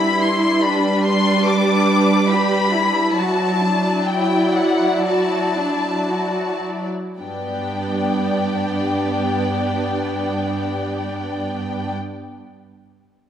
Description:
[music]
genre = cinematic, emotional film score for orchestra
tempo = 53-75 BPM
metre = 4/4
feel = rubato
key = G major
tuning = A4 = 440 Hz
[part]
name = warm symphonic violin section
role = melody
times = 0.0-11.9 s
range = F#5 to D6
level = -22 LUFS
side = left 4 dB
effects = none
[part]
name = rich symphonic violin section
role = second line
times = 0.0-11.9 s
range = D4 to D5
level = -26 LUFS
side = left 3 dB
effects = none
[part]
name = warm studio viola section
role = accompaniment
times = 0.0-11.9 s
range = F#3 to D4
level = -22 LUFS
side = right 2 dB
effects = none
[part]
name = rich symphonic cello section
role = bass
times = 0.0-11.9 s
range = G2 to G4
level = -23 LUFS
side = right 2 dB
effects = none
[sound]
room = moderate concert hall reverb, RT60 2.0 s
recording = none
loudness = -17 LUFS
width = side -9 dB against mid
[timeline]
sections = 0.0-7.2 A section; 7.2-11.7 B section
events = slowing down 0.0-7.2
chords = 0.0 G; 3.2 Dadd9/F#; 7.2 G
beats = 0.63 1.46 2.31 | 3.18 4.09 5.06 6.10 | 7.20 8.31 9.43 10.54

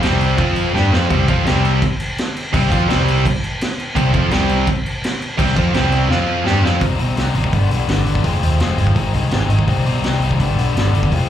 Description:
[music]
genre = punk rock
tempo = 168 BPM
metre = 4/4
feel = straight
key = C harmonic minor from 6.8 s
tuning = A4 = 440 Hz
[part]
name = distorted electric guitar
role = riff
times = 0.0-11.3 s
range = G2 to G4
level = -21 LUFS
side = left 7 dB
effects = distortion, slapback echo
[part]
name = fuzz guitar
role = riff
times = 0.0-6.8 s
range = C3 to G4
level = -23 LUFS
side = equal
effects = distortion
[part]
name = tight distorted guitar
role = riff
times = 0.0-6.8 s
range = C3 to G4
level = -21 LUFS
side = right 11 dB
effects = distortion
[part]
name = overdriven picked electric bass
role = bass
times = 0.0-11.2 s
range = F1 to B2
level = -18 LUFS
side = equal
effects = none
[part]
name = raw garage drum kit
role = drums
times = 0.0-11.2 s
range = crash cymbal, hi-hat, kick drum, snare drum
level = -20 LUFS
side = equal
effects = none
[sound]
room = little or no reverb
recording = live gig heard through the venue's PA, club reverb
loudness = -14 LUFS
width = side -10 dB against mid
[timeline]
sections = 0.0-6.8 A section; 6.8-11.3 B section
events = drum fill 0.7-1.1, 6.1-6.8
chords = 0.4 F5; 0.7 C5; 6.1 F5; 6.5 C5; 6.8 Cm; 7.5 G; 8.2 Fm; 9.0 Ab; 9.7 Cm; 10.4 G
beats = 0.03 0.39 0.74 | 1.10 1.46 1.81 2.17 | 2.53 2.89 3.24 3.60 | 3.96 4.32 4.67 5.03 | 5.39 5.74 6.10 6.46 | 6.82 7.17 7.53 7.89 | 8.25 8.61 8.96 9.32 | 9.68 10.04 10.40 10.75 | 11.11

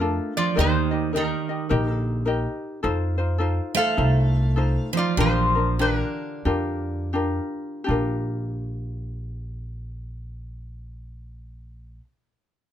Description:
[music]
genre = Hawaiian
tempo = 80-106 BPM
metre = 4/4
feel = swing 62% on 8ths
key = Bb major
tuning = A4 = 439 Hz
[part]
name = lap resonator guitar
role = melody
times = 0.0-7.1 s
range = D4 to F5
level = -26 LUFS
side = equal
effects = none
[part]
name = picked steel-string acoustic guitar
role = second line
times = 0.0-7.1 s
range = D3 to A3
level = -27 LUFS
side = right 6 dB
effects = none
[part]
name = ukulele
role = accompaniment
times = 0.0-12.0 s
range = D4 to Eb5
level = -27 LUFS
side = left 3 dB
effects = none
[part]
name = upright bass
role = bass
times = 0.0-12.0 s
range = Bb1 to F2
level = -25 LUFS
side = equal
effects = none
[sound]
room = light reverb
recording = close, detailed microphones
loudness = -21 LUFS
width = side -10 dB against mid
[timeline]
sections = 0.0-7.9 A section; 7.9-10.9 B section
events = slowing down 2.8-7.9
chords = 0.0 Bbmaj7; 0.6 Eb; 2.8 F7; 5.2 Bb6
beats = 0.01 | 0.57 1.14 1.71 2.27 | 2.84 3.40 3.98 4.57 | 5.18 5.80 6.46 7.15 | 7.88 8.63 9.39 10.14

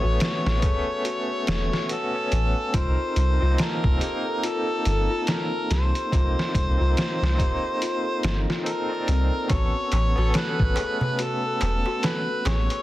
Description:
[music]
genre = trip hop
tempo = 71 BPM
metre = 4/4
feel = swing 60% on 16ths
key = unclear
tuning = A4 = 440 Hz
[part]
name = overdriven harmonica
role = melody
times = 0.0-12.8 s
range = A4 to C#5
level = -28 LUFS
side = equal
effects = tape echo
[part]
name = barky tine electric piano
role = accompaniment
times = 0.0-12.8 s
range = A3 to D5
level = -31 LUFS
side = equal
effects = tremolo, vintage 12-bit sampler grit, tape echo
[part]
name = warbly tape-like pad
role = sustained chords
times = 0.0-12.8 s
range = A4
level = -37 LUFS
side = right 1 dB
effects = chorus, built-in reverb
[part]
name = celesta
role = arpeggios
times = 0.0-12.8 s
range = C4 to A5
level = -33 LUFS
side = left 4 dB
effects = tape echo
[part]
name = soft 808-style bass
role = bass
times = 0.0-12.7 s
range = E1 to C2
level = -23 LUFS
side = equal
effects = tube saturation
[part]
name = trip hop sampler-style drum kit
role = drums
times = 0.2-12.8 s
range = hi-hat, kick drum, snare drum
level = -26 LUFS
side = equal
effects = small room ambience
[part]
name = darbuka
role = percussion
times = 9.5-12.8 s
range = none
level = -32 LUFS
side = right 1 dB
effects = none
[sound]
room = studio ambience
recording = dense, heavily limited modern master, vinyl crackle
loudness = -21 LUFS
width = side -16 dB against mid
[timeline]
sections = 0.0-12.8 A section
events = none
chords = 0.0 Aadd9; 2.7 Cm7; 9.5 Aadd9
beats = 0.21 1.05 1.90 | 2.74 3.59 4.43 5.28 | 6.12 6.97 7.81 8.66 | 9.50 10.35 11.19 12.04

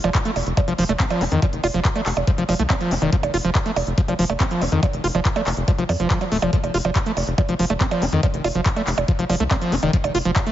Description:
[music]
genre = psychedelic trance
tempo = 141 BPM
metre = 4/4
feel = straight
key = F major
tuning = A4 = 440 Hz
[part]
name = screaming distorted acid line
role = riff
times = 0.0-10.5 s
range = Eb3 to F4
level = -23 LUFS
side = equal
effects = distortion, chorus, auto-pan, cassette tape, sidechain pumping, digital delay
[part]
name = tight sequencer bass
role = bass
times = 0.0-10.3 s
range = Eb1 to F2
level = -24 LUFS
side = left 1 dB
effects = none
[part]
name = techno drum kit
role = drums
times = 0.0-10.5 s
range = handclaps, hi-hat, percussion blips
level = -25 LUFS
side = right 3 dB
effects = overdrive
[part]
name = electronic kick drum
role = drums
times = 0.1-10.4 s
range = none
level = -20 LUFS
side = equal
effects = none
[sound]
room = light reverb, digital ambience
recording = heavily compressed radio sound, multiband compression, nothing above 7.5 kHz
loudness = -18 LUFS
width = side -12 dB against mid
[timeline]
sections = 0.0-10.5 A section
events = none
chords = 0.0 F5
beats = 0.15 0.57 1.00 | 1.42 1.85 2.27 2.70 | 3.13 3.55 3.98 4.40 | 4.83 5.25 5.68 6.11 | 6.53 6.96 7.38 7.81 | 8.23 8.66 9.08 9.51 | 9.93 10.36

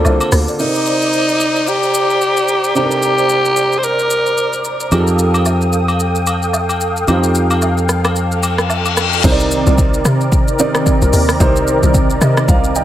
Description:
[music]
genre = amapiano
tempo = 111 BPM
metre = 4/4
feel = swing 58% on 16ths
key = C dorian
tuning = A4 = 443 Hz
[part]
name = warm grand piano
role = accompaniment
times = 0.0-12.8 s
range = C3 to G5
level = -20 LUFS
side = right 3 dB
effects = none
[part]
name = warm analog pad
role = sustained chords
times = 0.0-12.8 s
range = Eb3 to Eb6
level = -19 LUFS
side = equal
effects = chorus, sidechain pumping
[part]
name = tight log drum bass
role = bass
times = 0.0-0.5, 9.2-12.8 s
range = C2 to C3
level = -15 LUFS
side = equal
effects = none
[part]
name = woodblock and agogo bells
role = percussion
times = 0.0-0.3, 4.9-9.0 s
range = none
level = -23 LUFS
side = left 1 dB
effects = none
[part]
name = deep house drum kit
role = drums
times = 0.1-12.8 s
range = crash cymbal, hi-hat, kick drum, rim click, shaker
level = -18 LUFS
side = equal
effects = none
[part]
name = raspy alto saxophone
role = melody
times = 0.6-4.7 s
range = Eb4 to C5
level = -15 LUFS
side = equal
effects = tape echo
[part]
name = downlifter and reverse cymbal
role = sound effects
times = 0.6-4.9, 8.4-9.2 s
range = none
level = -23 LUFS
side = left 5 dB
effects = none
[part]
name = fingered electric bass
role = bass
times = 4.9-9.2 s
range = F2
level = -16 LUFS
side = equal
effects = none
[sound]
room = light reverb, studio ambience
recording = none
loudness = -12 LUFS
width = side -12 dB against mid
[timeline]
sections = 0.6-9.2 A section; 9.2-12.8 B section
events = break 0.0-0.6; reverse cymbal 8.4-9.2; drop 9.2-12.8; grand piano fill 11.9-12.8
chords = 0.0 Bbmaj9; 0.6 Cm9; 4.9 F9; 9.2 Cm9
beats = 0.05 | 0.59 1.13 1.67 2.21 | 2.75 3.29 3.83 4.38 | 4.92 5.46 6.00 6.54 | 7.08 7.62 8.16 8.70 | 9.24 9.78 10.32 10.86 | 11.40 11.94 12.48

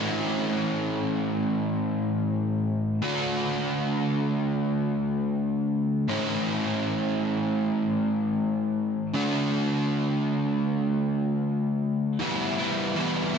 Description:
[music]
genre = rock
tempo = free time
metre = none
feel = none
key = A major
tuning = A4 = 439 Hz
[part]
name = crunchy overdriven guitar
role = solo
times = 0.0-13.4 s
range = A2 to F#4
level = -24 LUFS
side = equal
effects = wide subtle chorus, tape echo
[sound]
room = wet plate reverb, RT60 2.9 s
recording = dreamy mix soaked in reverb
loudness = -24 LUFS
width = side -6 dB against mid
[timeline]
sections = 0.0-12.2 A section; 12.2-13.4 B section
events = none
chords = 0.0 A; 3.0 D; 6.1 A; 9.1 D; 12.2 Em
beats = free time

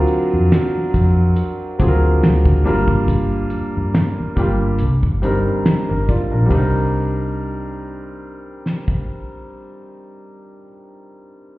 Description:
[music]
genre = R&B, neo-soul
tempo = 70 BPM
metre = 4/4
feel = swing 54% on 16ths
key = C minor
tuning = A4 = 439 Hz
[part]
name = clear concert grand piano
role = accompaniment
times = 0.0-11.6 s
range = F#3 to G5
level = -21 LUFS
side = equal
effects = none
[part]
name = vintage muted fingered electric bass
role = bass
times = 0.0-10.7 s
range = G1 to G2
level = -17 LUFS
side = equal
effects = none
[part]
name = cloth-damped thuddy drum kit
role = drums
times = 0.1-9.1 s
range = finger snaps, hi-hat, kick drum, ride cymbal, snare drum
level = -18 LUFS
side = equal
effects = none
[sound]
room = light reverb, small room reverb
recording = heard muffled through a wall, stone room reverb, EQ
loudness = -15 LUFS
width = side -18 dB against mid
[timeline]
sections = 0.0-6.5 A section; 6.5-9.9 B section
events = none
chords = 0.0 D7alt; 2.6 Gm7; 4.8 Cm9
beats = 0.51 1.36 2.22 | 3.08 3.93 4.79 5.65 | 6.50 7.36 8.22 9.08

